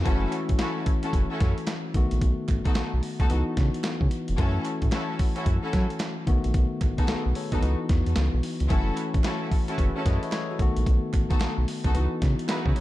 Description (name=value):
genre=R&B, new jack swing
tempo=111 BPM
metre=4/4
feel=swing 63% on 16ths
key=F# dorian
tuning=A4 = 439 Hz
part: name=bell-like tine electric piano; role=accompaniment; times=0.0-12.8 s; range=D#3 to E5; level=-30 LUFS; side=left 3 dB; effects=none
part: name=round analog bass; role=bass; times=0.0-12.7 s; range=E#1 to F#3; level=-26 LUFS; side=equal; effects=none
part: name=rich studio string section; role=stabs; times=0.1-12.7 s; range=B3 to B4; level=-33 LUFS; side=equal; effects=digital delay
part: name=dusty soul sampler-style drum kit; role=drums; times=0.1-12.8 s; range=hi-hat, kick drum, snare drum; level=-26 LUFS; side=equal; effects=none
part: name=group handclap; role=percussion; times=0.3-12.6 s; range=none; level=-46 LUFS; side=right 11 dB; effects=none
room=digital ambience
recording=dark, warm production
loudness=-23 LUFS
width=side -16 dB against mid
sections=0.1-12.8 A section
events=none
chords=0.1 F#m7; 1.9 B7; 3.3 C#m11; 4.4 F#m7; 6.3 B7; 7.6 C#m11; 8.7 F#m7; 10.6 B7; 11.9 C#m11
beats=| 0.06 0.60 1.14 1.68 | 2.22 2.76 3.30 3.84 | 4.38 4.92 5.46 6.00 | 6.54 7.08 7.62 8.16 | 8.71 9.25 9.79 10.33 | 10.87 11.41 11.95 12.49